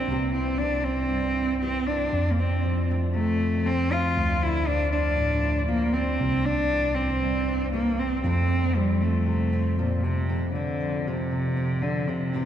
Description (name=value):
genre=acoustic folk duo or small band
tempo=118 BPM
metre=4/4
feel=straight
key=F major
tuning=A4 = 440 Hz
part: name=warm cello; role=melody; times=0.0-12.5 s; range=Bb2 to F4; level=-25 LUFS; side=right 1 dB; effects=none
part: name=fingerpicked steel-string acoustic guitar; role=accompaniment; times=0.0-12.5 s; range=F2 to A4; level=-31 LUFS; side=left 3 dB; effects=none
part: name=tine electric piano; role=bass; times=0.0-10.2 s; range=C2 to F2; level=-27 LUFS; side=equal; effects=none
room=wet cathedral reverb, RT60 6.2 s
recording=recorded in a church or concert hall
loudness=-22 LUFS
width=side -10 dB against mid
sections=0.0-10.3 A section; 10.3-12.5 A section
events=none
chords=0.1 C; 2.1 F; 4.2 Dm; 6.2 Cadd9; 8.2 F